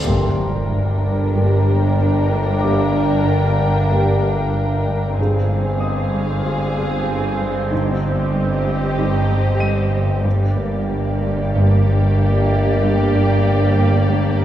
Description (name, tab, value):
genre	cinematic, suspense film score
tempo	94 BPM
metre	4/4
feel	straight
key	G phrygian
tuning	A4 = 440 Hz
part	muted symphonic violin section	second line	0.0-14.4 s	G4 to Bb4	-26 LUFS	equal	none
part	muted studio viola section	accompaniment	0.0-14.4 s	Bb3 to D4	-26 LUFS	right 1 dB	none
part	glass harmonica	sustained chords	0.0-14.4 s	G4 to Ab5	-29 LUFS	left 1 dB	none
part	mellow French horn section	sustained chords	0.0-14.4 s	Bb3 to Ab4	-26 LUFS	equal	none
part	overtone-sweeping drone	drone	0.0-14.4 s	G1	-25 LUFS	equal	chorus, built-in reverb, phaser
part	reverse cymbal and impact	sound effects	0.0-2.6 s	none	-27 LUFS	equal	none
part	clear grand piano	texture	0.0-14.4 s	C5 to Eb7	-35 LUFS	left 2 dB	none
part	muted studio violin section	melody	0.1-14.4 s	D5 to G5	-31 LUFS	left 2 dB	none
part	muted studio cello section	riff	0.1-14.4 s	G2 to G3	-24 LUFS	equal	none
part	muted studio cello section	bass	0.1-14.4 s	G2	-23 LUFS	right 1 dB	none
part	muted studio double bass section	bass	0.1-14.4 s	G1	-21 LUFS	right 1 dB	none
part	timpani	percussion	0.1-1.0, 5.2-8.6 s	G2	-27 LUFS	equal	none
room	wet recital hall reverb, RT60 1.7 s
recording	recorded in a church or concert hall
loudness	-15 LUFS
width	side -11 dB against mid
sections	0.1-14.4 A section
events	impact 0.1-2.6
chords	0.1 Gm; 5.2 Fm/G; 7.7 Cm/G; 10.3 Gm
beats	| 0.06 0.71 1.35 1.99 | 2.62 3.26 3.90 4.54 | 5.18 5.81 6.45 7.08 | 7.71 8.35 8.98 9.62 | 10.25 10.88 11.53 12.17 | 12.81 13.46 14.10